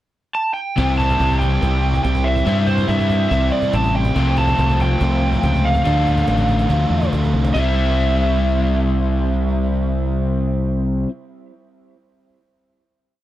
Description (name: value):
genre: indie rock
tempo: 142 BPM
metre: 4/4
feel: straight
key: C major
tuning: A4 = 443 Hz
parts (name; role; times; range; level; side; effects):
- lead guitar through a small cranked amp; melody; 0.3-11.0 s; C5 to A5; -22 LUFS; right 2 dB; overdrive, tape echo
- biting overdriven guitar; riff; 0.8-11.1 s; E3 to G4; -25 LUFS; right 4 dB; analog chorus, tape echo
- crunchy overdriven guitar; riff; 0.8-11.1 s; C3 to E4; -22 LUFS; left 5 dB; none
- growling fingered electric bass; bass; 0.8-11.0 s; A1 to G2; -19 LUFS; equal; overdrive
- cajon; drums; 0.8-7.7 s; none; -28 LUFS; equal; none
room: little or no reverb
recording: dry, close 1970s-style studio recording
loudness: -16 LUFS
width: side -14 dB against mid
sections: 0.0-0.8 pickup bar; 0.8-7.6 interlude; 7.6-11.0 final chord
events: none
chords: 0.0 N.C.; 0.8 C; 4.2 F/C; 5.9 Dm; 7.6 C